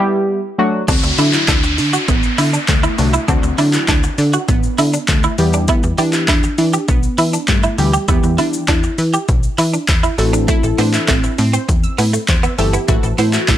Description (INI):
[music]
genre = dance-pop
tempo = 100 BPM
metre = 4/4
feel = straight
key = unclear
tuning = A4 = 440 Hz
[part]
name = warm analog keys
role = accompaniment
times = 0.0-13.4 s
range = D3 to A4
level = -20 LUFS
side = left 1 dB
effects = chorus, sidechain pumping
[part]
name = glassy wavetable pluck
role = melody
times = 0.6-13.6 s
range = G3 to G4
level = -22 LUFS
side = right 1 dB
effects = chorus
[part]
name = direct-recorded clean electric guitar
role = riff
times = 0.9-13.6 s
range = A3 to G4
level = -20 LUFS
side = right 4 dB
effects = ensemble chorus
[part]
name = plucky analog bass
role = bass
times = 0.9-13.6 s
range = G1 to E3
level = -17 LUFS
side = equal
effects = sidechain pumping
[part]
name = punchy analog drum machine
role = drums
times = 0.9-13.6 s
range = crash cymbal, handclaps, hi-hat, kick drum, shaker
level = -17 LUFS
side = equal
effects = overdrive
[part]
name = downlifter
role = sound effects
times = 0.9-5.7 s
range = none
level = -22 LUFS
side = equal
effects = none
[part]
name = wide unison pluck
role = arpeggios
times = 10.5-13.6 s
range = E4 to E6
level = -27 LUFS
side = right 1 dB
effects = auto-pan, sidechain pumping, analog delay
[sound]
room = little or no reverb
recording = dry, gritty hardware recording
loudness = -13 LUFS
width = side -12 dB against mid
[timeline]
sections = 0.9-13.6 A section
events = break 0.0-0.9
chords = 0.0 Em; 0.6 D; 5.4 Em; 10.2 Am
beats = 0.28 | 0.89 1.49 2.08 2.69 | 3.29 3.88 4.49 5.08 | 5.68 6.29 6.88 7.49 | 8.09 8.69 9.29 9.88 | 10.48 11.09 11.69 12.29 | 12.88 13.48